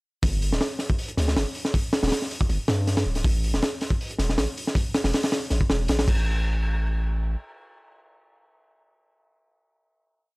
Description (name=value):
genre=drum and bass, jungle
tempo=159 BPM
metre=4/4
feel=straight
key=unclear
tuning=A4 = 440 Hz
part: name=long sustained 808-style bass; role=bass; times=0.2-7.4 s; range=D1 to G2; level=-24 LUFS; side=equal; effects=none
part: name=crunchy breakbeat drum kit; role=drums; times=0.2-6.2 s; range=crash cymbal, hi-hat, kick drum, snare drum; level=-24 LUFS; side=equal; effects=none
room=little or no reverb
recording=none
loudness=-22 LUFS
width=side -26 dB against mid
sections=0.2-6.3 drop; 6.3-9.3 final hit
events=drop 0.2-6.3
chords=none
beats=| 0.23 0.61 0.98 1.36 | 1.74 2.12 2.50 2.87 | 3.25 3.63 4.00 4.38 | 4.76 5.14 5.51 5.89 | 6.27 6.65 7.02